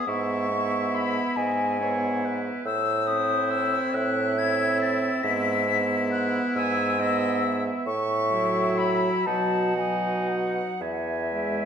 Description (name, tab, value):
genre	classical, slow romantic movement for wind quintet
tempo	38-48 BPM (dotted quarters)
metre	6/8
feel	rubato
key	E major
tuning	A4 = 440 Hz
part	silver concert flute	melody	0.0-11.7 s	E5 to B6	-27 LUFS	left 6 dB	none
part	bright oboe	second line	0.0-11.7 s	D#4 to E4	-34 LUFS	left 1 dB	none
part	bright clarinet	accompaniment	0.0-11.7 s	B4 to G#5	-32 LUFS	right 7 dB	none
part	warm French horn	accompaniment	0.0-11.7 s	F#3 to C4	-29 LUFS	right 1 dB	none
part	warm bassoon	bass	0.1-11.7 s	E2 to B2	-28 LUFS	right 3 dB	none
room	wet recital hall reverb, RT60 1.5 s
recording	dark, warm production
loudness	-22 LUFS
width	side -7 dB against mid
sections	0.0-11.7 A section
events	none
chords	0.1 E/G#; 2.7 Am; 5.3 E/G#; 7.9 F#m7/A; 9.3 B; 10.8 E